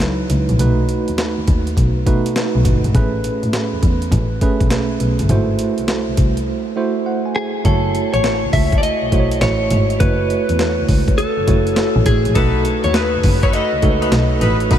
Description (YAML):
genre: R&B, new jack swing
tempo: 102 BPM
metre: 4/4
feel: swing 65% on 16ths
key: unclear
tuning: A4 = 440 Hz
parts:
  - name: tine electric piano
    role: accompaniment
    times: 0.0-14.8 s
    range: F#3 to G#5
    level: -20 LUFS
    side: right 4 dB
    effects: medium tremolo
  - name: breakbeat sampler-style drum kit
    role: drums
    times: 0.0-14.8 s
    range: hi-hat, kick drum, snare drum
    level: -20 LUFS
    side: equal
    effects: none
  - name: rich double bass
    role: bass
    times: 0.3-14.8 s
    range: F#1 to B2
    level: -18 LUFS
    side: equal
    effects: none
  - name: direct-recorded clean electric guitar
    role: melody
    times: 7.4-14.8 s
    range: G#4 to E5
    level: -20 LUFS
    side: left 2 dB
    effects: lush chorus, tape echo
  - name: clear horn section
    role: stabs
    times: 12.4-14.8 s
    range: D#4 to B4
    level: -23 LUFS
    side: left 3 dB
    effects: none
room: light reverb, digital ambience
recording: none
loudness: -14 LUFS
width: side -10 dB against mid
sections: 0.0-7.7 A section; 7.7-14.8 B section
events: break 6.5-7.7; tine electric piano fill 6.5-7.7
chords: 0.0 C#m11; 0.6 B7; 2.9 Amaj9; 5.3 G#7b9b13; 7.7 F#m7; 12.4 B7